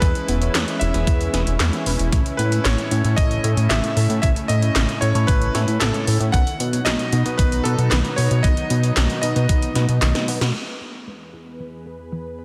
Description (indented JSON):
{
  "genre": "synthwave",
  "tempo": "114 BPM",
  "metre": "4/4",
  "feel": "straight",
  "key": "E major",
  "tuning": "A4 = 440 Hz",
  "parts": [
    { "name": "bright electric grand piano", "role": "melody", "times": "0.0-10.2 s", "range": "A4 to F#5", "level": "-29 LUFS", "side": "equal", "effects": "tape echo" },
    { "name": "lush unison pad", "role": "sustained chords", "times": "0.0-12.4 s", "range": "E2 to B4", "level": "-32 LUFS", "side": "equal", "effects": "chorus, sidechain pumping" },
    { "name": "warbly dusty pluck", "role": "arpeggios", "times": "0.0-12.4 s", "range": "C#3 to B4", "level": "-34 LUFS", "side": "equal", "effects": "none" },
    { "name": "bell-like tine electric piano", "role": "stabs", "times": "0.0-10.3 s", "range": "A2 to E5", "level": "-32 LUFS", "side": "equal", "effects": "phaser, delay" },
    { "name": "chorused synth bass", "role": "bass", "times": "0.0-10.5 s", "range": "E1 to B2", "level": "-22 LUFS", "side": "equal", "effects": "tube saturation, sidechain pumping" },
    { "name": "80s electronic pad drums", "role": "drums", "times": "0.0-12.4 s", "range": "crash cymbal, handclaps, hi-hat, snare drum", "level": "-27 LUFS", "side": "equal", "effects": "overdrive, low-pass filter on hats, low-pass filter on cymbals, low-pass filter on snare, low-pass filter on room" },
    { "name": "electronic kick drum", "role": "drums", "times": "0.0-9.6 s", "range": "none", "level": "-21 LUFS", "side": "equal", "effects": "none" }
  ],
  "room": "light reverb",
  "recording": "dense, heavily limited modern master",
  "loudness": "-19 LUFS",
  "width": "mono",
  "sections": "0.0-10.5 A section; 10.5-12.4 B section",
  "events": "drum fill 10.0-10.5; band accent 10.4; filter sweep on drum 10.5-12.4; filter sweep on analog synth pad 10.5-12.4; filter sweep on synth arpeggio sound 10.5-12.4",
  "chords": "0.0 E; 2.1 A; 6.3 B; 10.5 E"
}